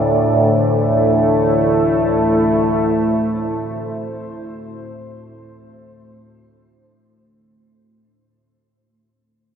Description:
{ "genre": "dark ambient drone", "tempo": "free time", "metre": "none", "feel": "none", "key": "unclear", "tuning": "A4 = 443 Hz", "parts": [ { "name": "deep dark ambient pad", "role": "sustained chords", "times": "0.0-7.4 s", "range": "A3 to D5", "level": "-18 LUFS", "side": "equal", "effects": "chorus, built-in reverb, shimmer reverb" }, { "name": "overtone-sweeping drone", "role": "drone", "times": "0.0-7.5 s", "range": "D2 to A2", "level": "-19 LUFS", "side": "equal", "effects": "chorus, built-in reverb, phaser" } ], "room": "wet huge ambient reverb, RT60 8.6 s", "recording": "none", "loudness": "-14 LUFS", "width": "side -8 dB against mid", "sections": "0.0-7.4 A section", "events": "fade-out 0.0-7.4", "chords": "0.0 Am", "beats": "free time" }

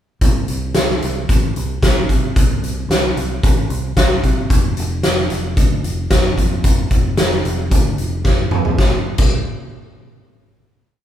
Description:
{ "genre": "classic rock", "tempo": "112 BPM", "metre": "4/4", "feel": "straight", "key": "unclear", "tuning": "A4 = 440 Hz", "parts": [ { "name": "fingered electric bass", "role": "bass", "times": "0.2-9.4 s", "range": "F1 to C3", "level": "-22 LUFS", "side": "equal", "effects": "none" }, { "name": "big rock drum kit", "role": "drums", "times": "0.2-9.3 s", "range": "crash cymbal, hi-hat, kick drum, snare drum, toms", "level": "-15 LUFS", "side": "equal", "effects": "none" } ], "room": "light reverb", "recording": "band playing live in one room", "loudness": "-14 LUFS", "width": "side -10 dB against mid", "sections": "0.2-8.8 riff; 8.8-10.9 final note", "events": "drum fill 8.2-8.8", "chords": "none", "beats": "| 0.21 0.74 1.28 1.82 | 2.35 2.89 3.43 3.96 | 4.50 5.03 5.57 6.10 | 6.64 7.17 7.71 8.24 | 8.78 9.32" }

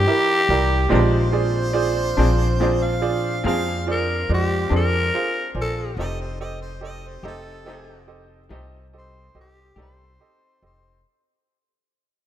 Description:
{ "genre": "slow blues", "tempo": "47 BPM (dotted quarters)", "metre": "12/8", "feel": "straight", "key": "F mixolydian", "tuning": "A4 = 440 Hz", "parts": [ { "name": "growling tenor saxophone", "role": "melody", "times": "0.0-11.1 s", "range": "G4 to C5", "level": "-22 LUFS", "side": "left 1 dB", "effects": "slapback echo" }, { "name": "tonewheel organ", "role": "sustained chords", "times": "0.0-11.0 s", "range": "Db3 to A5", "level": "-35 LUFS", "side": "left 1 dB", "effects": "slow rotary speaker" }, { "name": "upright bass", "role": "bass", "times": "0.0-11.0 s", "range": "F1 to F2", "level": "-23 LUFS", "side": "left 1 dB", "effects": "none" }, { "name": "bright upright piano", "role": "accompaniment", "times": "0.1-10.9 s", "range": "Ab3 to Ab5", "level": "-25 LUFS", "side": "right 5 dB", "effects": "none" }, { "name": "clear harmonica", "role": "second line", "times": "0.9-8.1 s", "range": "A4 to F5", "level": "-30 LUFS", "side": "right 3 dB", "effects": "overdrive" }, { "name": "electric guitar through a small old amp", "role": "accompaniment", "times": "0.9-10.0 s", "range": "Bb2 to G4", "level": "-30 LUFS", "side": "left 5 dB", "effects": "tremolo" } ], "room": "moderate lush hall reverb, RT60 2.4 s", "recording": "rough home demo mix", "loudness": "-18 LUFS", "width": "side -11 dB against mid", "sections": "0.0-11.1 A section", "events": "fade-out 0.0-11.1", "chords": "0.0 C9; 0.9 Bb9; 6.0 F9", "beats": "| 0.91 2.18 3.44 4.71 | 5.97 7.24 8.51 9.78" }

